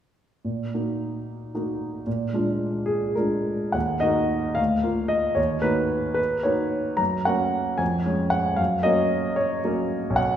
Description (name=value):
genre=classical, romantic character piece for solo piano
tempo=67-78 BPM (dotted quarters)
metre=6/8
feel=rubato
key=Eb minor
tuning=A4 = 440 Hz
part: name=clear concert grand piano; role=solo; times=0.4-10.4 s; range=B1 to Bb5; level=-22 LUFS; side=equal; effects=none
room=wet recital hall reverb, RT60 1.8 s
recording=heard from further back in the room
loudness=-22 LUFS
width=side -10 dB against mid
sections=0.4-3.7 A section; 3.7-10.4 B section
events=none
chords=0.4 Ebm/Bb; 2.1 Bb7; 3.7 Ebm; 4.6 Bb/D; 5.4 Ebm; 7.0 Gb; 7.8 Db/F; 8.6 Gb